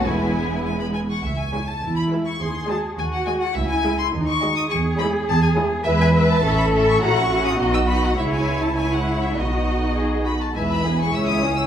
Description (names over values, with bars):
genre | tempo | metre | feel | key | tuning
quick classical-period movement for symphony orchestra | 103 BPM | 2/4 | straight | C# minor, E major from 5.9 s | A4 = 439 Hz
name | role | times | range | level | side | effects
clear chamber violin section | melody | 0.0-11.6 s | D#5 to E6 | -26 LUFS | left 3 dB | none
rich studio violin section | second line | 0.0-11.7 s | E4 to G#5 | -26 LUFS | left 2 dB | none
warm chamber viola section | accompaniment | 0.0-11.7 s | G#3 to G#4 | -27 LUFS | right 1 dB | none
dark French horn section | sustained chords | 0.0-1.0, 10.6-11.7 s | E3 to E4 | -29 LUFS | equal | none
rich symphonic double bass section | bass | 0.0-11.7 s | E1 to E2 | -24 LUFS | right 1 dB | none
warm chamber cello section | bass | 0.0-11.7 s | C#2 to B4 | -24 LUFS | right 1 dB | none
room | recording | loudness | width
wet recital hall reverb, RT60 1.7 s | recorded in a church or concert hall | -18 LUFS | side -9 dB against mid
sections
0.0-1.2 A section; 1.2-10.6 B section; 10.6-11.7 A section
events
none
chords
0.1 E; 1.2 C#m; 1.8 E; 2.4 G#5/D#; 3.6 C#m; 4.1 G#5/D#; 4.7 C#m/E; 5.9 E; 6.4 A; 7.0 F#7/A#; 7.6 B; 8.2 C#m; 9.4 B; 10.6 E; 11.1 C#m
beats
| 0.06 0.65 | 1.24 1.82 | 2.40 2.98 | 3.56 4.14 | 4.72 5.29 | 5.86 6.44 | 7.02 7.60 | 8.18 8.77 | 9.36 9.96 | 10.55 11.14